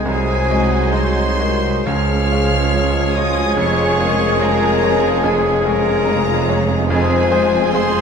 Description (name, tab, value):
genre	classical, romantic movement for piano and orchestra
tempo	72 BPM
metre	4/4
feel	rubato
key	Db major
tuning	A4 = 440 Hz
part	rich studio violin section	melody	0.0-8.0 s	Ab5 to F6	-25 LUFS	left 3 dB	none
part	warm grand piano	melody	0.0-8.0 s	C2 to Eb5	-22 LUFS	left 3 dB	none
part	mellow large flute ensemble	second line	0.0-7.8 s	Ab6	-28 LUFS	equal	none
part	rich studio violin section	second line	0.0-8.0 s	F4 to Ab4	-29 LUFS	left 2 dB	none
part	clear studio viola section	accompaniment	0.0-8.0 s	Ab3 to Eb4	-27 LUFS	right 2 dB	none
part	clear trombone section	sustained chords	0.0-8.0 s	F3 to Ab3	-27 LUFS	right 5 dB	none
part	mellow trumpet	stabs	0.0-8.0 s	Ab4	-26 LUFS	right 2 dB	none
part	clear studio cello section	bass	0.0-8.0 s	C2 to F2	-25 LUFS	right 4 dB	none
part	rich studio double bass section	bass	0.0-8.0 s	F1 to Db2	-23 LUFS	right 3 dB	none
part	warm tuba	bass	0.0-8.0 s	F1 to Db2	-26 LUFS	right 7 dB	none
part	bright clarinet	second line	0.1-7.9 s	C5 to Eb5	-29 LUFS	equal	none
part	clear oboe	second line	0.1-8.0 s	Ab4 to F5	-26 LUFS	right 2 dB	none
part	mellow bassoon	accompaniment	0.1-7.9 s	F3 to Ab3	-26 LUFS	right 2 dB	none
part	dark French horn section	sustained chords	0.1-8.0 s	F4 to C5	-22 LUFS	left 7 dB	none
room	moderate scoring stage reverb, RT60 2.0 s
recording	faint mains hum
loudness	-14 LUFS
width	side -6 dB against mid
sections	0.0-8.0 A section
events	none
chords	0.1 Ab7/C; 1.9 Db; 3.6 Db/F; 6.9 Fm